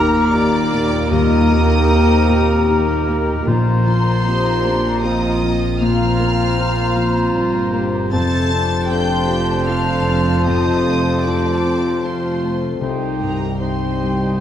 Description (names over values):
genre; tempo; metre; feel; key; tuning
cinematic; 77 BPM; 3/4; rubato; Eb lydian; A4 = 438 Hz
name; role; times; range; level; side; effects
rich studio violin section; melody; 0.0-14.4 s; Bb5 to A6; -28 LUFS; left 1 dB; none
clear oboe; second line; 0.0-14.4 s; Bb4 to C5; -26 LUFS; right 1 dB; none
dark clarinet; second line; 0.0-14.4 s; Eb4 to G4; -27 LUFS; equal; none
mellow flute section; second line; 0.0-14.4 s; G5 to Bb5; -26 LUFS; left 3 dB; none
warm symphonic violin section; second line; 0.0-14.4 s; Bb4 to A5; -29 LUFS; left 2 dB; none
dark concert grand piano; accompaniment; 0.0-14.4 s; C2 to G4; -22 LUFS; left 2 dB; none
rich symphonic viola section; accompaniment; 0.0-14.4 s; G3 to A4; -26 LUFS; right 1 dB; none
mellow French horn section; sustained chords; 0.0-14.4 s; G3 to G4; -25 LUFS; left 3 dB; none
concert harp; arpeggios; 0.0-14.4 s; F2 to Eb6; -25 LUFS; left 5 dB; none
warm symphonic cello section; bass; 0.0-14.4 s; C2 to Bb2; -24 LUFS; right 2 dB; none
warm symphonic double bass section; bass; 0.0-14.4 s; F1 to Eb2; -22 LUFS; right 2 dB; none
timpani; percussion; 3.5-4.6 s; Bb2; -24 LUFS; right 1 dB; none
room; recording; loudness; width
wet scoring stage reverb, RT60 1.9 s; dark, warm production; -14 LUFS; side -10 dB against mid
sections
0.0-14.4 A section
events
none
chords
0.0 Eb; 3.5 Bbsus2; 8.1 F; 12.8 Cm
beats
0.34 | 1.12 1.91 2.69 | 3.47 4.25 5.03 | 5.80 6.57 7.34 | 8.12 8.90 9.67 | 10.46 11.24 12.02 | 12.81 13.60